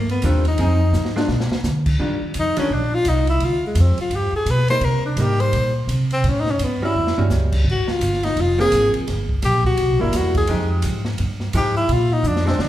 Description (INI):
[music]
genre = jazz, small-group swing and bop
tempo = 170 BPM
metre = 4/4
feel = swing 63% on 8ths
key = Eb major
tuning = A4 = 445 Hz
[part]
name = warm tenor saxophone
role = melody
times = 0.0-12.7 s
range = Ab3 to C5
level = -21 LUFS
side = left 1 dB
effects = none
[part]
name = upright bass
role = bass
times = 0.0-12.7 s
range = F1 to D3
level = -20 LUFS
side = equal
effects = none
[part]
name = open jazz drum kit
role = drums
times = 0.1-12.7 s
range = crash cymbal, hi-hat, kick drum, ride cymbal, snare drum, toms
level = -27 LUFS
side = right 1 dB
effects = none
[part]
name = archtop guitar, miked and amplified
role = accompaniment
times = 0.2-12.6 s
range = Eb3 to Ab4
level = -26 LUFS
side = equal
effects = none
[sound]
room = wet large studio reverb, RT60 1.2 s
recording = heard from further back in the room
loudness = -17 LUFS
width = side -13 dB against mid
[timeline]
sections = 0.0-2.0 A section; 2.0-12.7 A section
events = tenor saxophone solo 0.0-12.7; drum fill 0.9-1.6, 7.0-7.3, 12.2-12.7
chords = 0.0 Ebmaj9; 0.6 Fm7; 1.3 Bb; 2.0 Ebmaj9; 3.4 Dm7b5; 4.1 G; 4.8 Cm7; 6.2 A6; 7.7 Ab69; 9.1 Gm; 9.8 C7; 10.5 Fm9; 11.9 Bb7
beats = 0.24 | 0.59 0.94 1.30 1.65 | 2.00 2.35 2.71 3.06 | 3.42 3.77 4.12 4.48 | 4.83 5.18 5.54 5.89 | 6.24 6.60 6.95 7.30 | 7.66 8.01 8.36 8.71 | 9.07 9.42 9.77 10.13 | 10.48 10.83 11.18 11.54 | 11.89 12.24 12.60